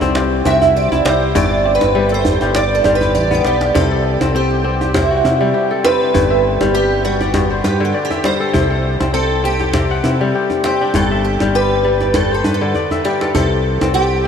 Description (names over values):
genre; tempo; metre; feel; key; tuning
west african traditional, West African string and xylophone music; 100 BPM; 4/4; swing 55% on 16ths; C lydian; A4 = 442 Hz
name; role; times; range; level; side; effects
kora; arpeggios; 0.0-14.3 s; G2 to F#5; -17 LUFS; left 4 dB; none
fingered electric bass; bass; 0.0-14.3 s; G1 to C3; -20 LUFS; equal; none
djembe; percussion; 0.0-14.3 s; none; -21 LUFS; right 2 dB; none
picked old ladder-braced acoustic guitar; melody; 0.5-14.3 s; E4 to E5; -17 LUFS; right 3 dB; analog chorus, diffuse ambient delay
room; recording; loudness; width
wet huge ambient reverb, RT60 7.8 s; dreamy mix soaked in reverb; -13 LUFS; side -7 dB against mid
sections
0.0-3.7 A section; 3.7-14.3 B section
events
steel-string acoustic guitar solo 0.0-3.7; drum fill 3.0-3.7, 12.7-13.3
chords
0.0 C; 1.4 G; 3.7 C; 6.1 G; 8.5 C; 10.9 G; 13.3 C